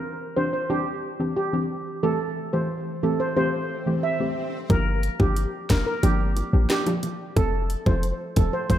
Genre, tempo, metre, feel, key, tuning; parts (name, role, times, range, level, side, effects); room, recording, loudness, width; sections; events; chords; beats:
dancehall; 90 BPM; 4/4; straight; G dorian; A4 = 440 Hz
soft round pluck; accompaniment; 0.0-8.8 s; E3 to A4; -27 LUFS; left 1 dB; chorus, low-pass filter
steel pan; melody; 0.4-8.8 s; G4 to E5; -27 LUFS; right 2 dB; low-pass filter, diffuse ambient delay
swell; sound effects; 3.2-4.7 s; -37 LUFS; left 5 dB
warm 808-style bass; bass; 4.7-8.8 s; E1 to A1; -23 LUFS; equal
island pop drum kit; drums; 4.7-8.8 s; hi-hat, kick drum, rim click, snare drum; -24 LUFS; equal
bongos; percussion; 4.7-8.8 s; -36 LUFS; right 2 dB
moderate lush hall reverb, RT60 1.9 s, digital ambience; dreamy mix soaked in reverb; -22 LUFS; side -11 dB against mid
0.0-4.7 A section; 4.7-8.8 B section
filter sweep 0.0-4.7; swell 3.2-4.7
0.0 Cadd9; 2.0 Am7; 4.7 Gm7; 7.4 F
0.03 0.70 1.36 | 2.03 2.70 3.37 4.03 | 4.70 5.37 6.03 6.70 | 7.37 8.03 8.70